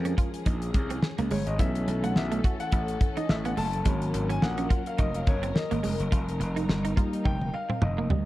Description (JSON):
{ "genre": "early-eighties boogie funk", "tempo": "106 BPM", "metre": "4/4", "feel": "swing 56% on 16ths", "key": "unclear", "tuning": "A4 = 438 Hz", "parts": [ { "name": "warm grand piano", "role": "accompaniment", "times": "0.0-8.3 s", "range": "E3 to A5", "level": "-33 LUFS", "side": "left 3 dB", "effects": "none" }, { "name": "warm studio string section", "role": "sustained chords", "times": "0.0-8.3 s", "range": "E3 to Bb4", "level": "-36 LUFS", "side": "left 2 dB", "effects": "none" }, { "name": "gritty slap bass", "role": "bass", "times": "0.0-8.3 s", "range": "F1 to F2", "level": "-29 LUFS", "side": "equal", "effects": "overdrive" }, { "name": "semi-hollow electric guitar", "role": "riff", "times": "0.1-8.2 s", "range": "G3 to F#4", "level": "-34 LUFS", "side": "right 6 dB", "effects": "analog chorus" }, { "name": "damped 70s drum kit", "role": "drums", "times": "0.1-8.2 s", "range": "hi-hat, kick drum, snare drum, toms", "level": "-27 LUFS", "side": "equal", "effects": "none" } ], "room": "light reverb, studio reverb", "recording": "dark, warm production", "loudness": "-25 LUFS", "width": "side -16 dB against mid", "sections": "0.0-8.3 A section", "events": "grand piano solo 0.0-8.3; drum fill 7.3-8.3", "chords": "0.0 Eb9sus4; 1.6 B9sus4; 3.9 Ab9sus4; 6.1 F9sus4" }